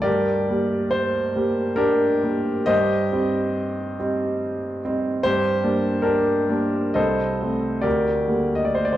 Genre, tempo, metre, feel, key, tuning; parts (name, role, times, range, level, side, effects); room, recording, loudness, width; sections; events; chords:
classical, romantic character piece for solo piano; 69 BPM; 3/4; uneven beats, rubato; G minor; A4 = 441 Hz
clear grand piano; solo; 0.0-9.0 s; C2 to Eb5; -19 LUFS; equal
wet recital hall reverb, RT60 1.6 s; dark, warm production; -19 LUFS; side -13 dB against mid
0.1-9.0 A section
0.1 Gm; 2.7 Cm/G; 5.3 Gm; 7.0 Adim/C; 7.8 Gm/D